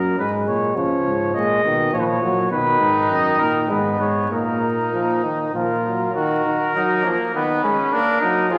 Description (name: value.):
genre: classical, imitative canzona for brass ensemble.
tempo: 101 BPM.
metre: 3/4.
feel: uneven beats.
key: Eb minor.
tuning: A4 = 437 Hz.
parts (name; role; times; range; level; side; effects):
mellow trumpet; melody; 0.0-8.6 s; Ab4 to D#5; -24 LUFS; equal; none.
clear euphonium; accompaniment; 0.0-8.6 s; Eb3 to Bb3; -24 LUFS; equal; none.
dark bass trombone; bass; 0.0-6.1 s; F#2 to C#3; -28 LUFS; equal; none.
warm trumpet; second line; 2.5-8.6 s; Bb3 to Gb4; -26 LUFS; equal; none.
room: wet scoring stage reverb, RT60 2.0 s.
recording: vinyl crackle.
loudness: -20 LUFS.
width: mono.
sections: 0.0-6.1 A section; 6.1-8.6 B section.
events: none.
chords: 0.2 G#m; 0.8 C#; 1.9 F#/A#; 2.5 B; 3.7 Abm; 4.3 Bbsus4; 5.5 Bb5; 6.1 Ebm; 7.3 Abm/Eb; 7.9 Bb.